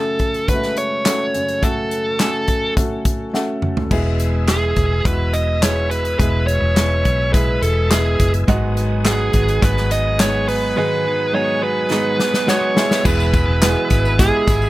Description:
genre	piano-driven pop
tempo	105 BPM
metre	4/4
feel	straight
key	E major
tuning	A4 = 442 Hz
part	bluesy overdriven lead guitar	melody	0.0-14.7 s	G#4 to D#5	-20 LUFS	right 1 dB	distortion
part	warm concert grand piano	accompaniment	0.0-14.7 s	F#2 to G#5	-23 LUFS	equal	none
part	natural country drum kit	drums	0.2-14.6 s	crash cymbal, handclaps, hi-hat, kick drum, snare drum, toms	-19 LUFS	equal	none
part	tonewheel organ	sustained chords	3.9-14.7 s	B4 to E6	-31 LUFS	left 1 dB	chorus vibrato, fast rotary speaker
part	vintage muted fingered electric bass	bass	3.9-14.7 s	E1 to B1	-19 LUFS	equal	none
part	direct-recorded clean electric guitar	riff	8.5-14.7 s	G#2 to G#4	-25 LUFS	right 5 dB	none
part	tambourine	percussion	13.1-14.7 s	none	-34 LUFS	left 3 dB	none
room	little or no reverb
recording	none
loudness	-15 LUFS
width	side -17 dB against mid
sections	0.0-3.9 A section; 3.9-13.1 B section; 13.1-14.7 C section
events	grand piano fill 3.1-3.9; drum fill 3.3-3.9, 11.9-13.1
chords	0.0 F#m; 3.9 E; 8.5 G#m7; 12.8 E

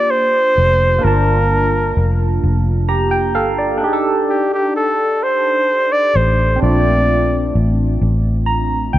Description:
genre	slow six-eight R&B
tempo	43 BPM (dotted quarters)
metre	6/8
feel	straight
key	G minor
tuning	A4 = 440 Hz
part	breathy flugelhorn	melody	0.0-7.6 s	G4 to D5	-16 LUFS	equal	none
part	barky tine electric piano	accompaniment	0.0-9.0 s	A3 to Bb5	-19 LUFS	right 1 dB	overdrive, phaser
part	vintage muted fingered electric bass	bass	0.0-9.0 s	F1 to Eb2	-16 LUFS	equal	none
room	light reverb, small room ambience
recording	none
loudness	-13 LUFS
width	side -14 dB against mid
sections	0.0-9.0 A section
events	tine electric piano fill 2.4-3.8, 8.0-9.0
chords	0.0 Ebmaj9; 1.0 Gm9; 3.8 F13; 6.6 Bbmaj9

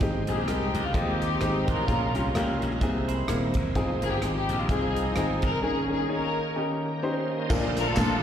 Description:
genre	uptempo gospel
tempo	128 BPM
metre	4/4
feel	swing 57% on 8ths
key	Ab major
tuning	A4 = 440 Hz
part	clear upright piano	accompaniment	0.0-8.2 s	Ab2 to Db5	-29 LUFS	left 2 dB	slapback echo
part	bright tonewheel organ	sustained chords	0.0-8.2 s	D3 to Eb5	-34 LUFS	right 3 dB	slow rotary speaker, overdrive, chorus vibrato
part	glassy slap bass	bass	0.0-8.2 s	D#1 to Eb2	-29 LUFS	equal	none
part	modern studio drum kit	drums	0.0-8.1 s	crash cymbal, hi-hat, kick drum, rim click, snare drum	-30 LUFS	equal	none
part	warm studio string section	melody	0.3-8.2 s	C4 to Bb4	-30 LUFS	left 2 dB	slapback echo
part	clean electric guitar	second line	2.8-3.7 s	C4 to E5	-37 LUFS	right 8 dB	slapback echo
part	tambourine and handclaps	percussion	7.5-8.1 s	none	-41 LUFS	right 3 dB	none
room	light reverb, small room ambience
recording	live gig heard through the venue's PA, recital hall reverb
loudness	-24 LUFS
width	side -9 dB against mid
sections	0.0-7.5 A section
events	none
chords	0.0 Abmaj7; 1.9 Bbm7; 2.8 C7alt; 3.8 Fm7; 5.6 Eb7sus4; 6.6 Eb7; 7.5 Bbmaj7

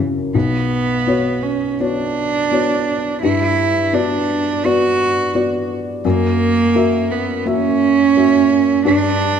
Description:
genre	neoclassical piano and strings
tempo	85 BPM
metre	4/4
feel	rubato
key	B harmonic minor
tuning	A4 = 441 Hz
part	warm cello	second line	0.0-9.4 s	A#3 to F#4	-16 LUFS	right 5 dB	none
part	felt-muted upright piano	accompaniment	0.0-9.4 s	B1 to E5	-18 LUFS	left 4 dB	none
room	moderate scoring stage reverb, RT60 1.6 s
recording	dark, warm production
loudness	-14 LUFS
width	side -7 dB against mid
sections	0.3-9.4 A section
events	none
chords	0.3 Bmadd9; 3.2 Gmaj7; 6.0 F#7; 8.9 Em7/G (rootless)

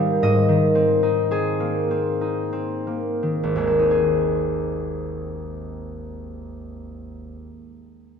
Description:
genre	classical, solo harp piece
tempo	42-60 BPM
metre	3/4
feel	rubato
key	Ab major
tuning	A4 = 441 Hz
part	concert harp	solo	0.0-7.5 s	Ab1 to F5	-20 LUFS	left 1 dB	none
room	moderate concert hall reverb, RT60 2.3 s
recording	none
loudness	-19 LUFS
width	side -7 dB against mid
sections	0.0-3.9 A section; 3.9-7.8 B section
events	slowing down 0.0-3.9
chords	0.2 Bb9sus4/Ab; 3.9 Ab

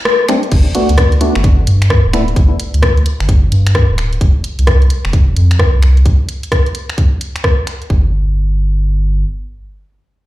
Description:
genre	UK garage, two-step garage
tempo	130 BPM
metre	4/4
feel	swing 63% on 16ths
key	G major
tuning	A4 = 441 Hz
part	garage drum kit	drums	0.1-7.9 s	crash cymbal, finger snaps, hi-hat, rim click	-18 LUFS	left 2 dB	overdrive
part	percussive organ stab	stabs	0.3-2.2 s	G3 to F#4	-17 LUFS	equal	wide subtle chorus, cassette tape, ping-pong delay
part	soft dub sub bass	bass	0.5-9.2 s	D1 to G2	-12 LUFS	equal	sidechain pumping
part	electronic kick drum	drums	0.5-8.0 s	none	-11 LUFS	equal	overdrive
room	light reverb, digital ambience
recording	played on a big sound system in a bare room, large studio reverb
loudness	-10 LUFS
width	side -16 dB against mid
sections	0.5-7.9 A section; 7.9-10.3 B section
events	break 0.0-0.5; band accent 0.1; filter sweep on synth stab 0.5-2.4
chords	0.0 Fadd9 (rootless); 0.5 Gmaj9; 4.2 F5; 7.9 N.C.

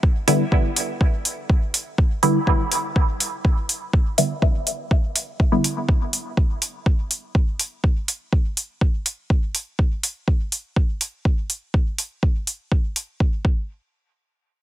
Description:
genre	dub techno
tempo	123 BPM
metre	4/4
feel	straight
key	E minor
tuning	A4 = 441 Hz
part	electronic kick drum	drums	0.0-13.5 s	none	-18 LUFS	equal	none
part	filtered dub chord stab	stabs	0.3-5.8 s	D3 to E4	-23 LUFS	equal	phaser, sidechain pumping, dub echo
part	electronic hi-hat	drums	0.3-13.1 s	none	-22 LUFS	right 1 dB	none
room	light reverb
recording	none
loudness	-19 LUFS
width	side -13 dB against mid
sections	0.0-13.7 A section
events	filter sweep on synth stab 0.0-5.9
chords	0.0 Em7; 13.4 N.C.

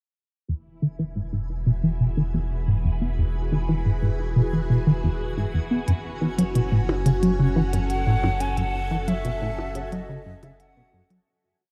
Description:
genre	ambient, sequencer-driven space music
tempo	89 BPM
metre	4/4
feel	straight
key	E major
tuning	A4 = 440 Hz
part	phased string machine	sustained chords	0.5-11.3 s	E3 to B4	-35 LUFS	equal	ensemble chorus, phaser, shimmer reverb
part	plucky analog bass	riff	0.5-11.2 s	E2 to C#4	-25 LUFS	equal	analog chorus, tape echo
part	warm sub bass	bass	0.5-11.2 s	E1 to F#1	-31 LUFS	equal	none
part	twinkling granular texture	texture	1.5-11.3 s	G#5	-46 LUFS	equal	built-in reverb, shimmer reverb
part	electronic hi-hat and percussion blips	percussion	5.9-11.2 s	none	-33 LUFS	equal	overdrive, tape echo
part	breathy mellow silver concert flute	melody	7.9-11.1 s	D#5 to G#5	-33 LUFS	equal	shimmer reverb
room	moderate huge ambient reverb, RT60 8.7 s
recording	dark, warm production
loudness	-24 LUFS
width	mono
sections	0.5-11.3 A section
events	fade-in on string machine 0.5-11.3; fade-in on synth texture 0.5-11.3; filter sweep on analog synth bass 0.5-11.3; fade-out 7.7-11.3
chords	0.5 Eadd9; 5.9 F#m

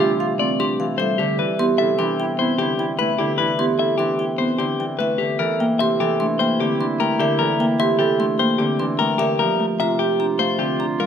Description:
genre	classical, minimalist pattern music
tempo	150 BPM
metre	5/4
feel	straight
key	unclear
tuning	A4 = 440 Hz
part	clean electric guitar	melody	0.0-11.1 s	G4 to E5	-23 LUFS	left 8 dB	none
part	clear clarinet	second line	0.0-11.1 s	E4 to F4	-30 LUFS	right 5 dB	none
part	Celtic harp	accompaniment	0.0-11.1 s	C3 to C4	-22 LUFS	left 1 dB	none
part	marimba with medium mallets	arpeggios	0.0-11.1 s	C4 to B4	-24 LUFS	right 10 dB	none
part	xylophone with plastic mallets	arpeggios	0.0-11.1 s	E5 to C6	-29 LUFS	left 2 dB	none
room	moderate recital hall reverb, RT60 1.5 s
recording	close, detailed microphones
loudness	-18 LUFS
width	side -8 dB against mid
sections	0.0-5.4 A section; 5.4-11.1 B section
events	none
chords	0.0 Dm9; 1.4 Cmaj9; 5.4 C13; 9.4 Gm11

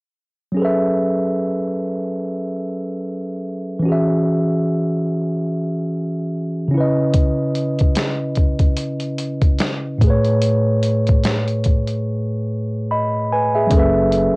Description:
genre	lo-fi hip hop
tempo	73 BPM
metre	4/4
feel	swing 57% on 16ths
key	unclear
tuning	A4 = 441 Hz
part	mellow tine electric piano	accompaniment	0.5-14.4 s	A2 to B5	-18 LUFS	equal	low-pass filter, cassette tape
part	lo-fi sampler-style drum kit	drums	7.1-14.3 s	finger snaps, hi-hat, kick drum, snare drum	-17 LUFS	equal	cassette tape
part	upright bass	bass	13.7-14.3 s	F#1	-21 LUFS	equal	none
room	light reverb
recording	home recording on cassette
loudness	-17 LUFS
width	side -29 dB against mid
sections	0.6-13.7 A section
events	break 12.1-13.7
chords	0.6 F#m11; 3.9 E69; 6.7 C#m7; 10.0 Amaj9; 13.7 F#m11

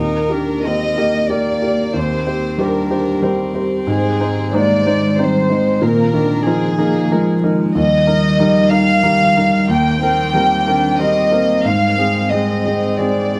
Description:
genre	neoclassical piano and strings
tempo	92 BPM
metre	3/4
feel	rubato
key	C minor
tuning	A4 = 435 Hz
part	dark chamber violin section	melody	0.0-13.4 s	Ab4 to G5	-20 LUFS	equal	none
part	warm cello	second line	0.0-13.4 s	G3 to Eb4	-23 LUFS	equal	none
part	clear grand piano	accompaniment	0.0-13.4 s	Eb2 to C5	-20 LUFS	equal	none
part	ethereal airy pad	sustained chords	0.0-13.4 s	Eb3 to C5	-26 LUFS	equal	ensemble chorus, built-in reverb
room	light reverb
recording	close, detailed microphones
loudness	-16 LUFS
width	mono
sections	0.0-13.4 A section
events	none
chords	0.0 Eb; 2.0 Cm7/Eb; 3.9 Ab; 5.8 Bb7sus4; 7.8 Eb; 9.7 Cm7/Eb; 11.6 Ab

